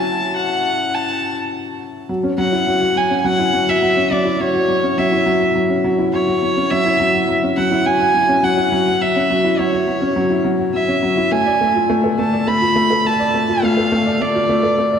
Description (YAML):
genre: electronica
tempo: 104 BPM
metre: 4/4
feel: straight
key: unclear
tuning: A4 = 440 Hz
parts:
  - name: dark violin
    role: melody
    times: 0.0-15.0 s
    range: C#5 to B5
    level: -18 LUFS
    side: right 1 dB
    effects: digital delay
  - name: dark upright piano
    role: riff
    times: 0.0-15.0 s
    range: F#3 to D5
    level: -17 LUFS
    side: left 1 dB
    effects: digital delay
room: wet concert hall reverb, RT60 2.1 s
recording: none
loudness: -14 LUFS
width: side -7 dB against mid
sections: 0.0-2.1 A section; 2.1-15.0 B section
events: break 0.0-2.1; build-up 0.0-2.1; drop 2.1-15.0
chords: 0.0 Esus2/F#; 11.3 Dm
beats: 0.36 0.94 1.51 | 2.09 2.67 3.24 3.82 | 4.40 4.97 5.55 6.13 | 6.71 7.28 7.86 8.44 | 9.01 9.59 10.17 10.74 | 11.32 11.90 12.47 13.05 | 13.63 14.21 14.78